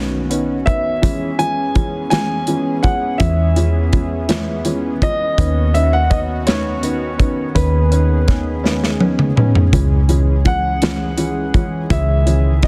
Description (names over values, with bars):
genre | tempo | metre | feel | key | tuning
six-eight pop ballad | 55 BPM (dotted quarters) | 6/8 | straight | unclear | A4 = 437 Hz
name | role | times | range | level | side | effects
felt-muted upright piano | accompaniment | 0.0-12.7 s | D#3 to C#4 | -25 LUFS | equal | none
warm analog pad | sustained chords | 0.0-12.7 s | D#3 to G#4 | -27 LUFS | equal | chorus
vintage muted fingered electric bass | bass | 0.0-12.7 s | B1 to E2 | -20 LUFS | equal | none
modern studio drum kit | drums | 0.3-12.7 s | hi-hat, kick drum, snare drum, toms | -19 LUFS | equal | none
dark grand piano | melody | 0.7-12.7 s | B4 to G#5 | -24 LUFS | equal | none
room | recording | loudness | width
light reverb | dense, heavily limited modern master | -17 LUFS | mono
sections
0.0-12.7 A section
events
drum fill 8.6-9.7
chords
0.0 Badd9; 1.0 E6; 5.4 Badd9/D#; 9.7 C#m